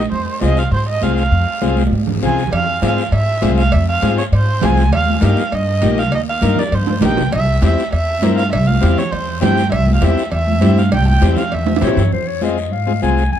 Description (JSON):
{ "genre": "latin, cumbia", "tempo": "200 BPM", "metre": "4/4", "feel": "straight", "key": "unclear", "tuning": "A4 = 440 Hz", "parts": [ { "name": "warm erhu", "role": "melody", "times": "0.0-12.0 s", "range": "C5 to Ab5", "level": "-20 LUFS", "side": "right 4 dB", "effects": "none" }, { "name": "overdriven combo organ", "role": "accompaniment", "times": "0.0-13.2 s", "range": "Bb3 to Bb4", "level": "-22 LUFS", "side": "left 8 dB", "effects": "none" }, { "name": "upright bass", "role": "bass", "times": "0.0-13.4 s", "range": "Bb1 to Bb2", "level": "-16 LUFS", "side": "equal", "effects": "none" }, { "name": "congas", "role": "percussion", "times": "0.1-13.4 s", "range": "none", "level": "-21 LUFS", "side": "right 2 dB", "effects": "none" }, { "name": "guiro", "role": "percussion", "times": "0.1-13.4 s", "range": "none", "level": "-34 LUFS", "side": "left 6 dB", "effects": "none" }, { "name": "cowbell and timbales", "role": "percussion", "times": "2.5-12.0 s", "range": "none", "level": "-25 LUFS", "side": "right 5 dB", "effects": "none" }, { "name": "growling clarinet", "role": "second line", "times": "11.8-13.4 s", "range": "C5 to Ab5", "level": "-21 LUFS", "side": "left 8 dB", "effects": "none" } ], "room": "light reverb", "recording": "dark, warm production", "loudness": "-13 LUFS", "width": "side -10 dB against mid", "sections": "0.0-2.5 A section; 2.5-12.1 B section; 12.1-13.4 C section", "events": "drum fill 1.8-2.5, 6.9-7.3, 11.7-12.1; clarinet solo 12.1-13.4", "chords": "0.1 Fm; 4.9 Eb; 7.3 C; 12.1 Fm" }